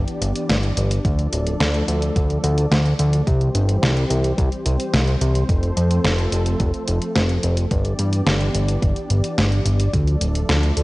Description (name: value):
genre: synthwave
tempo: 108 BPM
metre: 4/4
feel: straight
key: C major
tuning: A4 = 440 Hz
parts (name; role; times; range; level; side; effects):
- warm analog pad; sustained chords; 0.0-10.8 s; E3 to D5; -26 LUFS; equal; chorus, sidechain pumping
- fat analog bass; bass; 0.0-10.8 s; D1 to G2; -19 LUFS; equal; none
- detuned 8-bit digital drum machine; drums; 0.1-10.8 s; hi-hat, snare drum; -23 LUFS; equal; overdrive, cassette tape
- electronic kick drum; drums; 1.0-10.0 s; none; -22 LUFS; equal; overdrive, cassette tape
room: light reverb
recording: home recording on cassette, nothing above 10.6 kHz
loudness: -17 LUFS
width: side -20 dB against mid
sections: 0.0-10.8 A section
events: none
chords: 0.0 G6; 1.0 Dm; 3.3 C; 5.5 F; 7.7 G6; 9.9 Dm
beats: 0.49 | 1.05 1.60 2.16 2.71 | 3.27 3.82 4.38 4.93 | 5.49 6.05 6.60 7.16 | 7.71 8.27 8.82 9.38 | 9.94 10.49